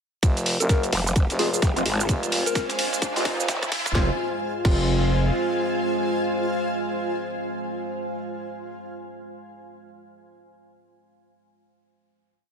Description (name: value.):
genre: bass house.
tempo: 129 BPM.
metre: 4/4.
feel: swing 61% on 16ths.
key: F minor.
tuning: A4 = 440 Hz.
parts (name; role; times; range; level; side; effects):
deep dark ambient pad; sustained chords; 1.6-8.2 s; Ab3 to C5; -31 LUFS; equal; chorus, built-in reverb, sidechain pumping.
growling FM bass; bass; 0.2-5.3 s; F1 to Gb1; -25 LUFS; equal; overdrive, sidechain pumping, high-pass filter.
breakbeat sampler-style drum kit; drums; 0.2-3.9 s; ride cymbal, snare drum; -34 LUFS; right 2 dB; none.
electronic kick drum; drums; 0.2-4.8 s; none; -21 LUFS; equal; none.
garage drum kit; drums; 0.2-4.8 s; crash cymbal, hi-hat, shaker, snare drum; -28 LUFS; right 1 dB; none.
riser; sound effects; 2.3-4.0 s; none; -33 LUFS; equal; none.
granular cloud pad; texture; 1.1-8.4 s; F4 to Ab5; -30 LUFS; equal; built-in reverb, sidechain pumping.
soft struck synth lead; melody; 0.6-2.6 s; Ab4 to Bb4; -30 LUFS; left 3 dB; chorus, dub echo.
growl bass; bass; 0.9-3.7 s; Eb1 to Ab1; -24 LUFS; equal; chorus, tube saturation, sidechain pumping.
percussive organ stab; stabs; 1.4-8.9 s; Ab3 to F4; -31 LUFS; right 1 dB; ensemble chorus, sidechain pumping, dub echo.
room: light reverb.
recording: high-pass filter.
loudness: -21 LUFS.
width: side -7 dB against mid.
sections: 0.2-4.0 build; 4.0-7.7 final chord.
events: build-up 0.2-4.0; drum fill 2.1-4.0; riser 2.3-4.0.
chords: 0.2 Fm.